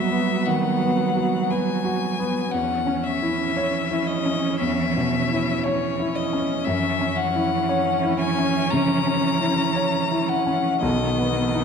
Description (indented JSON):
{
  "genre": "classical, slow romantic movement for piano quartet",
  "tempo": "58 BPM",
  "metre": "4/4",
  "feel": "rubato",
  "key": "unclear",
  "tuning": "A4 = 440 Hz",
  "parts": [
    { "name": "clear violin", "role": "melody", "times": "0.0-11.6 s", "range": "C#5 to A#5", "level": "-25 LUFS", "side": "left 7 dB", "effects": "none" },
    { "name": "rich cello", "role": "second line", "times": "0.0-11.6 s", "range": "D#3 to F#3", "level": "-26 LUFS", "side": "right 5 dB", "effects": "none" },
    { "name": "rich viola", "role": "accompaniment", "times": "0.0-11.6 s", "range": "B3 to C#4", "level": "-28 LUFS", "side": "right 4 dB", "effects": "none" },
    { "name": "warm grand piano", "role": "accompaniment", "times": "0.0-11.6 s", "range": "B1 to C#5", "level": "-24 LUFS", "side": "left 1 dB", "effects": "none" }
  ],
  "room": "moderate scoring stage reverb, RT60 1.9 s",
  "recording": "dark, warm production",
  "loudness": "-20 LUFS",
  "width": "side -6 dB against mid",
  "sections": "0.0-11.6 A section",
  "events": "none",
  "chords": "0.0 G#m7; 2.5 C#m7/E; 6.7 F#7; 10.8 B"
}